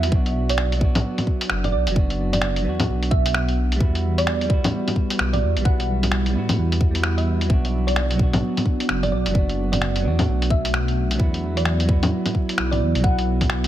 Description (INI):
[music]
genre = future garage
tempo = 130 BPM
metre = 4/4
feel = swing 62% on 16ths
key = B minor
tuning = A4 = 441 Hz
[part]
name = thumb-piano-like synth pluck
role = melody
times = 0.0-13.3 s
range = D5 to F#5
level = -29 LUFS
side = right 3 dB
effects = wide subtle chorus, cassette tape, dub echo
[part]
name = clean electric guitar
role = accompaniment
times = 0.0-13.7 s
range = F#3 to F#4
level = -28 LUFS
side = right 2 dB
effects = sidechain pumping, dub echo
[part]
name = warbly tape-like pad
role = sustained chords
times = 0.0-13.7 s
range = E3 to F#4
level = -29 LUFS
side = right 1 dB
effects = chorus, built-in reverb, sidechain pumping
[part]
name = dark detuned saw bass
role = bass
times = 0.0-13.7 s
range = F#1 to A2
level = -23 LUFS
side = equal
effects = sidechain pumping
[part]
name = lo-fi sampler-style drum kit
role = drums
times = 0.0-13.7 s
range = bongos, finger snaps, hi-hat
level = -25 LUFS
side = left 1 dB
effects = none
[part]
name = electronic kick drum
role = drums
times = 0.1-13.5 s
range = none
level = -20 LUFS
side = equal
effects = none
[sound]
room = little or no reverb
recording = vinyl crackle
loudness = -18 LUFS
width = side -12 dB against mid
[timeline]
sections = 0.0-13.7 A section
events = none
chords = 0.1 Bm; 3.8 Emadd9; 7.5 Bm; 11.2 Esus2